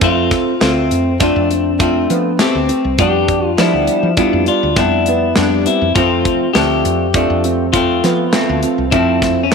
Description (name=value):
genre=progressive instrumental, band music in an uneven meter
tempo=101 BPM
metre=5/4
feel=straight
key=F lydian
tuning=A4 = 440 Hz
part: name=clean electric guitar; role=second line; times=0.0-9.5 s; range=C4 to G4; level=-17 LUFS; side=left 12 dB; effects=none
part: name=archtop guitar, miked and amplified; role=accompaniment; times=0.0-9.5 s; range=F3 to G4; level=-18 LUFS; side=equal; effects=double-tracked left and right
part: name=dark grand piano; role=arpeggios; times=0.0-9.4 s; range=B3 to E4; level=-19 LUFS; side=right 11 dB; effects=none
part: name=woody fretless electric bass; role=bass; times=0.0-9.5 s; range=C2 to F3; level=-20 LUFS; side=equal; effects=analog chorus
part: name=tight metal drum kit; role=drums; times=0.0-9.5 s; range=hi-hat, kick drum, snare drum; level=-18 LUFS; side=equal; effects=none
room=moderate plate reverb, RT60 1.8 s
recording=1960s-style stereo with parts hard left and right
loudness=-12 LUFS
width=side -5 dB against mid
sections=0.0-9.5 A section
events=none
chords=0.0 F; 3.0 G; 6.0 F